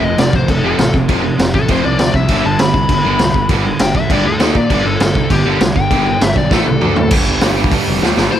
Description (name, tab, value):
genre	punk rock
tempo	199 BPM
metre	4/4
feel	straight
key	unclear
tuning	A4 = 440 Hz
part	biting lead guitar	melody	0.0-8.4 s	G4 to B5	-19 LUFS	left 3 dB	overdrive, digital delay
part	crunchy overdriven guitar	riff	0.0-8.3 s	F2 to D#4	-19 LUFS	right 11 dB	none
part	raw garage guitar	riff	0.0-8.4 s	F2 to D#4	-20 LUFS	left 10 dB	overdrive
part	fuzz picked electric bass	bass	0.0-8.3 s	F1 to A#2	-19 LUFS	equal	overdrive
part	raw garage drum kit	drums	0.2-8.2 s	crash cymbal, hi-hat, kick drum, snare drum, toms	-15 LUFS	equal	none
room	little or no reverb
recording	none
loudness	-11 LUFS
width	side -10 dB against mid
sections	0.0-7.1 A section; 7.1-8.3 B section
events	lead electric guitar solo 0.0-7.1; drum fill 6.5-7.1, 8.0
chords	0.0 F; 2.3 G; 4.4 D#5; 4.7 G5; 6.5 A5; 6.8 D5; 7.1 G5